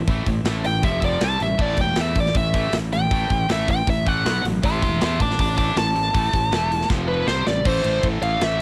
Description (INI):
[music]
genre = heavy metal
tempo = 158 BPM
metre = 4/4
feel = straight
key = A minor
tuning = A4 = 440 Hz
[part]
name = tight distorted guitar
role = riff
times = 0.0-8.6 s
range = F2 to C4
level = -29 LUFS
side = equal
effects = distortion, cassette tape
[part]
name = fuzz fingered electric bass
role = bass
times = 0.1-8.6 s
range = E1 to E2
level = -27 LUFS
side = equal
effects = overdrive
[part]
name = tight metal drum kit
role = drums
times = 0.1-8.5 s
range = crash cymbal, hi-hat, kick drum, ride cymbal, snare drum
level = -27 LUFS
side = equal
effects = cassette tape
[part]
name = high-gain lead guitar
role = melody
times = 0.7-8.6 s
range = B4 to D6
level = -25 LUFS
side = equal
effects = distortion, cassette tape
[sound]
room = little or no reverb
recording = home recording on cassette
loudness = -21 LUFS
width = mono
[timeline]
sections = 0.0-7.7 A section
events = lead electric guitar solo 0.0-7.7; drum fill 6.9-7.7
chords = 0.0 A5; 0.8 F5; 1.2 C5; 1.6 A5; 4.3 B5; 4.6 A5; 6.9 F5; 7.3 C5; 7.7 Am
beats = | 0.08 0.46 0.84 1.22 | 1.60 1.98 2.35 2.73 | 3.11 3.49 3.87 4.25 | 4.63 5.01 5.39 5.77 | 6.15 6.53 6.91 7.29 | 7.66 8.04 8.42